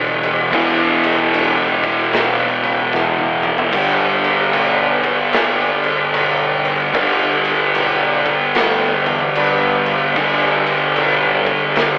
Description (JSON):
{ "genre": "stoner and doom metal", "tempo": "75 BPM", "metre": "4/4", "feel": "swing 63% on 8ths", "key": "unclear", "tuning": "A4 = 442 Hz", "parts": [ { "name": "thick fuzz guitar", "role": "riff", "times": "0.0-12.0 s", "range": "E2 to G3", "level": "-18 LUFS", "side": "equal", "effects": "distortion" }, { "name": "thick fuzz guitar", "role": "riff", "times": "0.0-12.0 s", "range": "E2 to G3", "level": "-19 LUFS", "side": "equal", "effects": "distortion" }, { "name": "growling picked electric bass", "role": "bass", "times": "0.0-12.0 s", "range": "E1 to G2", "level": "-23 LUFS", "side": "equal", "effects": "overdrive" }, { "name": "big rock drum kit", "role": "drums", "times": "0.2-12.0 s", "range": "crash cymbal, kick drum, snare drum, splash cymbal, toms", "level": "-18 LUFS", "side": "equal", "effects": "none" } ], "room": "light reverb", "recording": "band playing live in one room, telephone sound", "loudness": "-13 LUFS", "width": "side -39 dB against mid", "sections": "0.0-12.0 A section", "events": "drum fill 2.9-3.7", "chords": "0.0 Em; 3.7 G" }